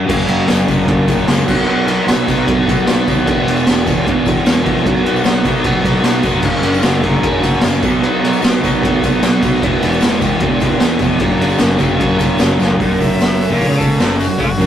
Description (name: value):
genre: garage rock duo or trio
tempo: 151 BPM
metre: 4/4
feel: straight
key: unclear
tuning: A4 = 444 Hz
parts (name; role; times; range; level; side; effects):
- fuzz guitar; riff; 0.0-14.7 s; E2 to B3; -14 LUFS; right 1 dB; distortion
- fuzz picked electric bass; bass; 0.1-14.7 s; E1 to F#2; -21 LUFS; equal; overdrive
- raw garage drum kit; drums; 0.1-14.7 s; crash cymbal, hi-hat, kick drum, ride cymbal, snare drum, toms; -16 LUFS; equal; none
- tambourine; percussion; 0.1-14.7 s; none; -36 LUFS; left 5 dB; none
- clear harmonica; melody; 13.0-14.7 s; F#4 to E5; -22 LUFS; left 1 dB; overdrive, digital delay
room: light reverb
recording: rough rehearsal-room recording, tube saturation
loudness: -12 LUFS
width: side -10 dB against mid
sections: 0.1-12.8 A section; 12.8-14.7 B section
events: drum fill 12.6; harmonica solo 12.8-14.7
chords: 0.1 F#5; 1.5 B5; 3.3 E5; 4.9 B5; 6.4 F#5; 7.8 B5; 9.6 E5; 11.2 F#5; 12.8 F#